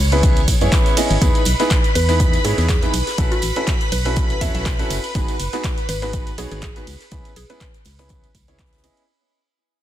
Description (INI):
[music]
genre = piano house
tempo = 122 BPM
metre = 4/4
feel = swing 55% on 16ths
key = unclear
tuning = A4 = 440 Hz
[part]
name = string machine, violins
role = sustained chords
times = 0.0-9.1 s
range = B4 to C#6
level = -27 LUFS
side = left 1 dB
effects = ensemble chorus, sidechain pumping
[part]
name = organ-like FM bass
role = bass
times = 0.0-8.9 s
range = F#1 to G#2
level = -21 LUFS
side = equal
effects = sidechain pumping
[part]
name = clear concert grand piano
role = riff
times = 0.1-9.0 s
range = B3 to D#5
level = -24 LUFS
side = right 1 dB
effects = sidechain pumping, tape echo
[part]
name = punchy analog drum machine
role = drums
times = 0.1-9.1 s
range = handclaps, hi-hat, ride cymbal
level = -27 LUFS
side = right 2 dB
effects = none
[part]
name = tambourine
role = percussion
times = 0.1-9.1 s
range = none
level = -33 LUFS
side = right 8 dB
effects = none
[part]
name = damped 70s drum kit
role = drums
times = 0.2-9.0 s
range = hi-hat, snare drum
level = -36 LUFS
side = left 4 dB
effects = none
[part]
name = electronic kick drum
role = drums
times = 0.2-8.7 s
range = none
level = -19 LUFS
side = equal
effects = none
[part]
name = mallet-like synth pluck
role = melody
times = 2.0-7.7 s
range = F#4 to E5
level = -29 LUFS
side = equal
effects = chorus, tape echo
[sound]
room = studio ambience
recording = dense, heavily limited modern master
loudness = -16 LUFS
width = side -12 dB against mid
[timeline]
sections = 0.0-9.1 A section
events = drop 0.0-9.1; fade-out 1.2-9.1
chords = 0.0 C#m7; 1.2 Emaj7; 2.9 B9sus4; 5.2 G#m7; 6.9 C#m7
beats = 0.23 0.72 | 1.22 1.71 2.20 2.69 | 3.18 3.67 4.17 4.66 | 5.15 5.64 6.13 6.63 | 7.12 7.61 8.10 8.59